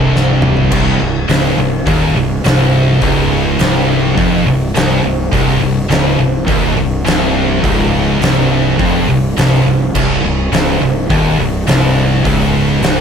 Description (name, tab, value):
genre	stoner and doom metal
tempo	104 BPM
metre	4/4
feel	straight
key	unclear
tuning	A4 = 440 Hz
part	heavy high-gain guitar	riff	0.0-13.0 s	C2 to F2	-17 LUFS	equal	distortion
part	thick fuzz guitar	riff	0.0-13.0 s	C2 to F2	-17 LUFS	left 8 dB	distortion
part	thick fuzz guitar	riff	0.0-13.0 s	C2 to F2	-16 LUFS	right 8 dB	distortion
part	fuzz fingered electric bass	bass	0.0-13.0 s	C1 to F1	-19 LUFS	equal	overdrive
part	oversized low-tuned drum kit	drums	0.2-13.0 s	crash cymbal, hi-hat, kick drum, snare drum, toms	-17 LUFS	equal	none
room	light reverb, small room ambience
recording	none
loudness	-10 LUFS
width	side -7 dB against mid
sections	0.7-13.0 A section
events	drum fill 0.1-0.7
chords	0.0 C5; 0.7 Cm